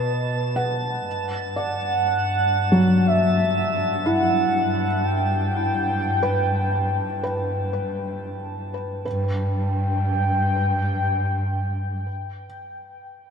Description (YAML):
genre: ambient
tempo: 60 BPM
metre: 4/4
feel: straight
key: G major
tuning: A4 = 439 Hz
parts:
  - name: warm velvety synth lead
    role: melody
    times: 0.0-12.5 s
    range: B4 to G5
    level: -25 LUFS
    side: equal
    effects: chorus, ping-pong delay
  - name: dark studio cello section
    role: bass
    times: 0.0-12.0 s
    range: G2 to B2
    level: -25 LUFS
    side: equal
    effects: none
  - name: drifting glass-harmonics texture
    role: texture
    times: 0.0-9.1 s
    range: A5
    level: -33 LUFS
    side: right 3 dB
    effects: chorus, built-in reverb
  - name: felt-muted upright piano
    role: arpeggios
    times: 0.6-13.3 s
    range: F#3 to F#5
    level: -25 LUFS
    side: equal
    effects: ping-pong delay
room: wet cathedral reverb, RT60 6.4 s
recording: none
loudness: -20 LUFS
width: side -7 dB against mid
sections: 0.0-9.1 A section; 9.1-13.1 B section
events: fade-in on synth texture 0.0-9.1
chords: 0.0 B7(no3); 1.1 Gmaj7; 9.1 G